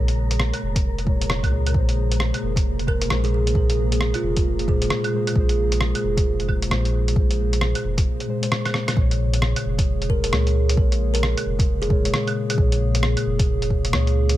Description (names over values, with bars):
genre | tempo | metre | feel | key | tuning
future garage | 133 BPM | 4/4 | swing 62% on 16ths | Bb minor | A4 = 439 Hz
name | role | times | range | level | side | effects
muted felt-like synth keys | accompaniment | 0.0-14.4 s | Bb2 to Db5 | -27 LUFS | left 4 dB | chorus, vintage 12-bit sampler grit, sidechain pumping, low-pass filter, dub echo
warbly tape-like pad | sustained chords | 0.0-14.4 s | C3 to Ab4 | -30 LUFS | right 4 dB | chorus, built-in reverb, sidechain pumping
warm sub bass | bass | 0.0-14.4 s | F1 to Db2 | -23 LUFS | equal | sidechain pumping
wind-like tuned noise texture | texture | 0.0-9.0 s | Bb3 to Bb4 | -37 LUFS | right 1 dB | built-in reverb
lo-fi sampler-style drum kit | drums | 0.1-14.4 s | claves, hi-hat, rim click | -26 LUFS | equal | none
electronic kick drum | drums | 0.8-13.8 s | none | -21 LUFS | equal | overdrive
kalimba | melody | 2.9-4.9, 10.1-12.3 s | F4 to Bb4 | -30 LUFS | right 1 dB | vintage 12-bit sampler grit, dub echo
room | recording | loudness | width
light reverb, digital ambience | echo-heavy mix | -19 LUFS | side -14 dB against mid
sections
0.0-9.0 A section; 9.0-14.4 B section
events
filter sweep on synth keys 0.0-9.0; break 8.1-9.0; drum fill 8.6-9.0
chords
0.0 Bbm7; 1.8 Abadd9; 9.0 Bbm7